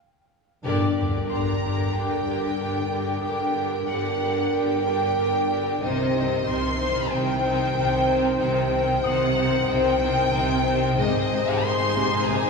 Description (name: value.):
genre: cinematic, suspense film score.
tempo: 93 BPM.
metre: 4/4.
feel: straight.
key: G minor.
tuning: A4 = 440 Hz.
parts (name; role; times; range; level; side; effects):
clear chamber violin section; melody; 0.6-12.5 s; D5 to C6; -27 LUFS; left 1 dB; none.
rich chamber violin section; second line; 0.6-12.5 s; Eb4 to C5; -29 LUFS; left 2 dB; none.
rich symphonic viola section; accompaniment; 0.6-12.5 s; C3 to Eb4; -29 LUFS; left 2 dB; none.
warm French horn section; sustained chords; 0.6-12.5 s; D3 to C5; -28 LUFS; equal; none.
rich chamber cello section; bass; 0.6-12.5 s; G2 to C3; -28 LUFS; right 1 dB; none.
rich chamber double bass section; bass; 0.6-12.3 s; G1 to C2; -31 LUFS; right 1 dB; none.
sub drop; sound effects; 0.6-3.2 s; none; -32 LUFS; left 2 dB; none.
concert harp; texture; 1.3-12.5 s; C6 to Eb6; -41 LUFS; left 3 dB; none.
clear chamber violin section; texture; 11.0-12.5 s; Ab5 to Eb6; -36 LUFS; left 3 dB; none.
room: wet cathedral reverb, RT60 4.4 s.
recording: recorded in a church or concert hall.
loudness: -21 LUFS.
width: side -4 dB against mid.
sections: 0.6-12.5 A section.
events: break 0.0-0.6; band accent 0.6-1.3; impact 0.6-3.2.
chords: 0.0 N.C.; 0.6 Gm; 5.8 Cm; 11.0 Ab.